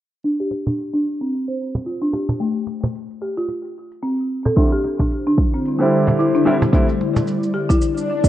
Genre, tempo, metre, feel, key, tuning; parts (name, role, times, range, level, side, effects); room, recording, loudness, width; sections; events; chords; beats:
organic downtempo; 111 BPM; 4/4; swing 58% on 16ths; A4 = 441 Hz
folk marimba with medium mallets; arpeggios; 0.2-7.8 s; A3 to C5; -21 LUFS; equal; low-pass filter, tape echo
shaker; drums; 0.2-8.3 s; -39 LUFS; right 2 dB; overdrive
cajon; percussion; 0.5-7.9 s; -22 LUFS; right 1 dB
felt-muted upright piano; accompaniment; 4.6-6.9 s; D3 to E4; -21 LUFS; right 1 dB; sidechain pumping, tape echo
ethereal airy pad; sustained chords; 5.3-8.3 s; D3 to D5; -22 LUFS; left 2 dB; ensemble chorus, built-in reverb, sidechain pumping
electronic kick drum; drums; 4.6-8.3 s; -17 LUFS; equal; overdrive
swell; sound effects; 7.9-8.3 s; -22 LUFS; equal
light reverb, small room ambience; rough home demo mix, low-pass filter; -17 LUFS; side -13 dB against mid
0.2-8.3 A section
filter sweep on marimba 0.2-8.3; filter sweep 0.2-8.3; swell 7.9-8.3
0.2 Dm7; 4.6 Cadd9/D
| 0.24 0.78 1.32 1.86 | 2.40 2.94 3.48 4.03 | 4.57 5.11 5.65 6.19 | 6.73 7.27 7.81